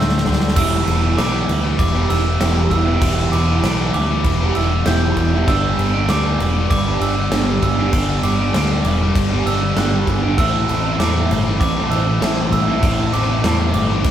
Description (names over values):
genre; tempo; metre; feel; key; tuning
post-rock; 98 BPM; 4/4; straight; E minor; A4 = 440 Hz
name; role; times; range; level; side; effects
glockenspiel with soft plastic mallets; arpeggios; 0.0-14.1 s; D6 to G6; -24 LUFS; right 3 dB; none
twangy electric guitar; arpeggios; 0.0-0.6 s; D3 to G4; -29 LUFS; left 2 dB; none
sludgy distorted guitar; riff; 0.0-14.1 s; G2 to E4; -22 LUFS; left 5 dB; overdrive
fingered electric bass; bass; 0.0-14.1 s; E1 to E2; -20 LUFS; equal; none
huge arena drum kit; drums; 0.0-14.1 s; crash cymbal, kick drum, snare drum, toms; -21 LUFS; equal; none
overdriven semi-hollow guitar; riff; 0.6-14.1 s; A2 to A4; -21 LUFS; right 4 dB; phaser
room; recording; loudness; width
moderate studio reverb, RT60 0.6 s; band playing live in one room; -15 LUFS; side -10 dB against mid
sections
0.6-14.1 A section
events
drum fill 0.0-0.6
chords
0.0 D7sus4; 0.6 Em7; 5.5 Gmaj7; 10.4 Am7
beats
| 0.56 1.18 1.79 2.40 | 3.02 3.63 4.25 4.86 | 5.47 6.09 6.70 7.32 | 7.93 8.54 9.16 9.77 | 10.38 10.99 11.61 12.22 | 12.83 13.44 14.05